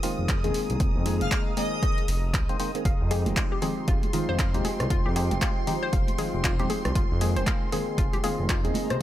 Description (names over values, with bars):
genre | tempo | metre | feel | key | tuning
deep house | 117 BPM | 4/4 | swing 60% on 16ths | F minor | A4 = 442 Hz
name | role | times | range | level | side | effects
percussive organ stab | stabs | 0.0-9.0 s | Eb3 to C5 | -31 LUFS | left 1 dB | chorus, phaser, sidechain pumping, digital delay
punchy analog drum machine | drums | 0.0-9.0 s | handclaps, hi-hat, rim click | -33 LUFS | equal | none
granular cloud pad | texture | 0.0-9.0 s | F4 to Bb5 | -39 LUFS | right 1 dB | built-in reverb, sidechain pumping
soft string machine | texture | 0.0-9.0 s | C6 to Eb6 | -40 LUFS | equal | ensemble chorus, sidechain pumping
smooth gliding synth bass | bass | 0.2-9.0 s | Eb1 to F2 | -28 LUFS | equal | tube saturation, sidechain pumping
electronic kick drum | drums | 0.3-8.6 s | none | -27 LUFS | equal | none
airy dreamy lead | melody | 1.2-2.0 s | Eb5 to F5 | -36 LUFS | equal | chorus, dub echo
analog pluck | arpeggios | 2.9-9.0 s | F4 to F5 | -34 LUFS | left 4 dB | chorus, sidechain pumping, dub echo
congas | percussion | 3.3-8.9 s | none | -35 LUFS | right 3 dB | none
room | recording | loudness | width
light reverb, digital ambience | none | -23 LUFS | side -13 dB against mid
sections
0.0-9.0 A section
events
none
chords
0.0 Fm9